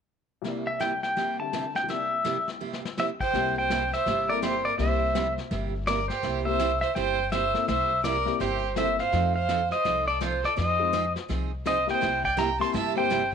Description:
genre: country, western swing.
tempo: 166 BPM.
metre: 4/4.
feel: swing 62% on 8ths.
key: C major.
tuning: A4 = 440 Hz.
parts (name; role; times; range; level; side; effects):
picked steel-string acoustic guitar; accompaniment; 0.4-13.2 s; C3 to A4; -34 LUFS; right 10 dB; none.
warm upright piano; accompaniment; 0.4-13.1 s; C2 to E5; -34 LUFS; left 14 dB; none.
vintage brush drum kit; drums; 0.4-13.3 s; brushed snare drum, crash cymbal, hi-hat, kick drum, snare drum; -38 LUFS; left 7 dB; none.
pedal steel guitar; melody; 0.7-13.3 s; C5 to C6; -26 LUFS; left 1 dB; none.
bright fiddle; second line; 3.0-13.3 s; F4 to A5; -32 LUFS; right 16 dB; none.
upright bass; bass; 3.3-13.3 s; G1 to F2; -32 LUFS; left 1 dB; none.
room: light reverb, small room ambience.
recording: 1960s-style stereo with parts hard left and right.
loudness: -24 LUFS.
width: side -7 dB against mid.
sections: 0.4-3.3 A section; 3.3-13.3 B section.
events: drum fill 2.6-3.0.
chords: 0.4 C7; 9.1 F7; 10.6 Fm7; 12.0 C7.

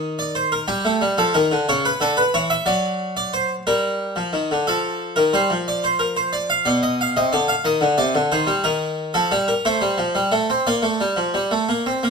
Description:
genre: classical, baroque-style two-part invention for harpsichord.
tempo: 60 BPM (dotted quarters).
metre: 6/8.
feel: straight.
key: C minor, Bb major from 8.6 s.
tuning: A4 = 440 Hz.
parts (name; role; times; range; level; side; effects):
harpsichord; solo; 0.0-12.1 s; B2 to F5; -18 LUFS; equal; none.
room: moderate stone room reverb, RT60 1.1 s.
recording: minimal, uncompressed stereo recording.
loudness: -18 LUFS.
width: side -5 dB against mid.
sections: 0.0-4.7 A section; 4.7-12.1 B section.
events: none.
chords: 0.0 Cm/Eb; 0.7 Gm; 1.7 A/C#; 2.7 D7/F#; 3.7 Gm; 4.7 F7; 5.7 Bb/F; 6.7 Bdim; 7.7 Cm; 8.6 Eb; 9.6 F; 10.7 Bb.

